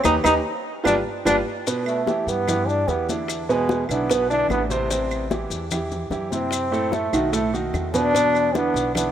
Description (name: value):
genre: Afro-Cuban jazz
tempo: 148 BPM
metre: 4/4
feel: straight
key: unclear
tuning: A4 = 440 Hz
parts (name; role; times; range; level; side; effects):
- bright trombone; melody; 0.0-9.1 s; G#3 to Eb4; -22 LUFS; equal; tape echo
- clear baby grand piano; accompaniment; 0.0-9.1 s; A2 to C5; -24 LUFS; right 3 dB; none
- upright bass; bass; 0.0-9.1 s; G1 to G2; -30 LUFS; left 1 dB; none
- bongos; percussion; 0.0-9.1 s; none; -33 LUFS; left 6 dB; none
- claves; percussion; 0.0-9.1 s; none; -36 LUFS; right 8 dB; none
- congas; percussion; 0.0-9.1 s; none; -32 LUFS; left 4 dB; none
- maracas; percussion; 0.0-9.1 s; none; -33 LUFS; left 8 dB; none
room: moderate lush hall reverb, RT60 2.7 s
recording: rough home demo mix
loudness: -20 LUFS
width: side -10 dB against mid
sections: 0.0-1.7 A section; 1.7-9.1 B section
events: band accent 0.1-1.7; drum fill 1.1-1.7, 7.5-8.1; trombone solo 1.7-9.1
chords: 0.1 Ebaug; 0.9 G7; 1.7 Em7; 3.3 E7; 4.9 Am7; 6.5 F#m7b5; 7.3 B7; 8.1 E5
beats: | 0.05 0.46 0.86 1.26 | 1.67 2.07 2.48 2.88 | 3.29 3.69 4.10 4.50 | 4.91 5.31 5.72 6.12 | 6.53 6.93 7.33 7.74 | 8.14 8.55 8.95